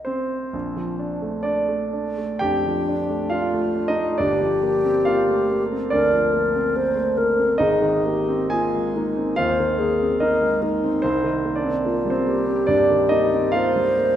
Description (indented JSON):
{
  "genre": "classical, impressionist duo for alto flute and grand piano",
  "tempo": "60-75 BPM",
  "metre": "4/4",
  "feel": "rubato",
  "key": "Bb mixolydian",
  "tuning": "A4 = 440 Hz",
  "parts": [
    { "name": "mellow hollow alto flute", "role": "melody", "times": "0.0-14.2 s", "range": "D4 to C5", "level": "-22 LUFS", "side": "left 1 dB", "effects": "none" },
    { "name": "warm grand piano", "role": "accompaniment", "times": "0.0-14.2 s", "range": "G1 to Ab5", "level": "-21 LUFS", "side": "right 1 dB", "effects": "none" }
  ],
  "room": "wet recital hall reverb, RT60 1.7 s",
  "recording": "none",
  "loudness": "-19 LUFS",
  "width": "side -10 dB against mid",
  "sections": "0.5-14.2 A section",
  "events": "none",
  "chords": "0.0 Cm11; 0.5 Bbmaj7; 4.2 Gm11; 7.6 Abadd9; 11.0 Cm7"
}